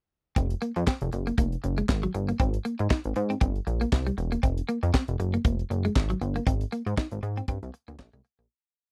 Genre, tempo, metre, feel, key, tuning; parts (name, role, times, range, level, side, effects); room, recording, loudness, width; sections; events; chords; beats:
early-eighties boogie funk; 118 BPM; 4/4; swing 56% on 16ths; A4 = 440 Hz
electric guitar at the edge of break-up; riff; 0.4-8.5 s; Gb3 to Eb4; -33 LUFS; equal; subtle chorus
chorused synth bass; bass; 0.4-8.5 s; E1 to Ab2; -30 LUFS; equal
tight funk drum kit; drums; 0.4-8.5 s; handclaps, hi-hat, kick drum, snare drum; -27 LUFS; equal
little or no reverb; dry, close 1970s-style studio recording; -28 LUFS; mono
0.4-8.5 breakdown
fade-out 6.5-8.5
0.4 F5; 1.1 Gbmaj9; 2.4 Ab; 3.4 Gm; 4.4 F5; 5.2 Gbmaj9; 6.5 Ab; 7.5 Gm; 8.0 Bbsus2
| 0.36 0.87 1.38 1.89 | 2.40 2.91 3.42 3.92 | 4.43 4.94 5.45 5.96 | 6.47 6.97 7.48 7.99